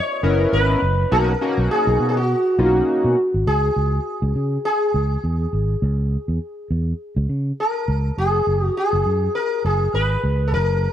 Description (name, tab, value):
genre	early-eighties boogie funk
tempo	102 BPM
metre	4/4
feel	swing 56% on 16ths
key	C# dorian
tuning	A4 = 440 Hz
part	sitar	melody	0.0-10.9 s	F#4 to C#5	-21 LUFS	equal	slapback echo
part	chorused polysynth	accompaniment	0.2-3.2 s	A#3 to A#4	-22 LUFS	left 2 dB	none
part	fingered electric bass	bass	0.2-10.9 s	F#1 to C#3	-20 LUFS	right 1 dB	none
room	small room ambience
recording	none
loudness	-18 LUFS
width	side -10 dB against mid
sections	0.0-3.5 A section; 3.5-10.9 B section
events	none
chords	0.0 F#9sus4; 1.1 Bmaj9; 3.5 C#5; 8.2 F#sus2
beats	0.53 | 1.12 1.71 2.29 2.88 | 3.47 4.06 4.65 5.24 | 5.82 6.41 7.00 7.59 | 8.18 8.76 9.35 9.94 | 10.53